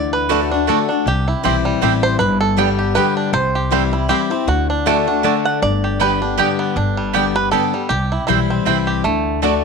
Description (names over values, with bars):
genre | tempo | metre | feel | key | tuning
bluegrass | 158 BPM | 3/4 | swing 55% on 8ths | G major | A4 = 439 Hz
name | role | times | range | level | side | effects
bluegrass banjo | melody | 0.0-9.6 s | G3 to F#5 | -20 LUFS | right 5 dB | none
picked steel-string acoustic guitar | accompaniment | 0.0-9.6 s | G2 to G4 | -19 LUFS | left 12 dB | none
upright bass | bass | 0.0-9.6 s | G1 to D2 | -22 LUFS | equal | none
mandolin | stabs | 0.3-9.5 s | A3 to A5 | -21 LUFS | right 14 dB | slapback echo
room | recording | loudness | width
light reverb, studio ambience | 1960s-style stereo with parts hard left and right | -15 LUFS | side -5 dB against mid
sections
0.0-6.8 A section; 6.8-9.6 A section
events
five-string banjo solo 0.0-9.6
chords
0.0 D; 1.1 C; 2.2 G; 3.3 C; 4.5 D; 5.6 G; 7.9 C; 9.0 D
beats
0.30 0.68 | 1.06 1.44 1.82 | 2.20 2.58 2.96 | 3.34 3.72 4.10 | 4.48 4.86 5.24 | 5.62 6.00 6.38 | 6.76 7.14 7.52 | 7.91 8.29 8.67 | 9.05 9.43